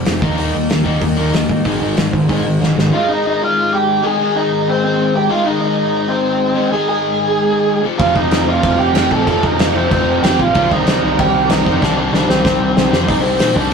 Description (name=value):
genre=punk rock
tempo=189 BPM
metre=4/4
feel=straight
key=unclear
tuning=A4 = 436 Hz
part: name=cranked stack guitar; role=riff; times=0.0-13.7 s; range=F2 to Eb4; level=-19 LUFS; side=left 5 dB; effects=overdrive
part: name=crunchy overdriven guitar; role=riff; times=0.0-2.9, 8.0-13.7 s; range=Ab2 to G4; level=-21 LUFS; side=right 5 dB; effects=none
part: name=distorted electric guitar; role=riff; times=0.0-3.4, 8.0-13.1 s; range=F2 to Eb4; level=-24 LUFS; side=right 1 dB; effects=distortion
part: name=overdriven picked electric bass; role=bass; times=0.1-2.9, 8.0-13.7 s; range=F1 to Bb2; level=-23 LUFS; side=equal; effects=none
part: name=loose indie drum kit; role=drums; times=0.1-2.9, 8.0-13.7 s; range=crash cymbal, hi-hat, kick drum, snare drum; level=-18 LUFS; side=equal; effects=none
part: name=bluesy overdriven lead guitar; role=melody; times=2.9-13.7 s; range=C4 to A5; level=-16 LUFS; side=right 2 dB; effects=distortion
room=moderate studio reverb, RT60 0.6 s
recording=rough rehearsal-room recording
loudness=-13 LUFS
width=side -6 dB against mid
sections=0.0-2.9 A section; 2.9-13.1 B section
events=drum fill 2.6-2.9, 11.8-13.1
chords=0.2 Eb; 1.7 Ab5; 7.8 F; 10.5 Cm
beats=0.07 | 0.38 0.70 1.02 1.34 | 1.66 1.97 2.29 2.61 | 2.93 3.24 3.56 3.88 | 4.20 4.51 4.83 5.15 | 5.46 5.78 6.10 6.42 | 6.73 7.05 7.37 7.69 | 8.01 8.32 8.64 8.96 | 9.28 9.59 9.91 10.23 | 10.55 10.87 11.18 11.50 | 11.82 12.14 12.45 12.77 | 13.09 13.41 13.72